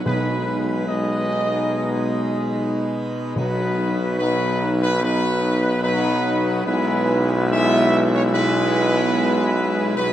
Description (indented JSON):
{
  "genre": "classical, ceremonial fanfare",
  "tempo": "73 BPM",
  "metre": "4/4",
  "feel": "straight",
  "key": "unclear",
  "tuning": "A4 = 440 Hz",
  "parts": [
    { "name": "bright trombone section", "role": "sustained chords", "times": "0.0-10.1 s", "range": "B2 to G#3", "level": "-26 LUFS", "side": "right 1 dB", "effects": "none" },
    { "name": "pipe organ, full organ", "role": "sustained chords", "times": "0.0-10.1 s", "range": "B2 to B4", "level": "-28 LUFS", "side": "equal", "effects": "none" },
    { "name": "dark trumpet section", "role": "melody", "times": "0.1-10.1 s", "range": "B4 to E5", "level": "-24 LUFS", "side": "equal", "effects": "none" },
    { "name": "mellow French horn section", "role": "sustained chords", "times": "0.1-10.1 s", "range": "B3 to E4", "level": "-26 LUFS", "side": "equal", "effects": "none" },
    { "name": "clear tuba", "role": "bass", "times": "0.1-10.1 s", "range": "B1", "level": "-23 LUFS", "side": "equal", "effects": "none" },
    { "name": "timpani", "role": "percussion", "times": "0.1-4.6 s", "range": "B2", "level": "-30 LUFS", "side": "left 1 dB", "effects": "none" }
  ],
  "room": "wet huge ambient reverb, RT60 8.8 s",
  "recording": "in a vast, echoing space",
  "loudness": "-18 LUFS",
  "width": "side -11 dB against mid",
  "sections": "0.0-10.1 A section",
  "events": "none",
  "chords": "0.1 G#m/B; 3.4 B; 6.7 E/B"
}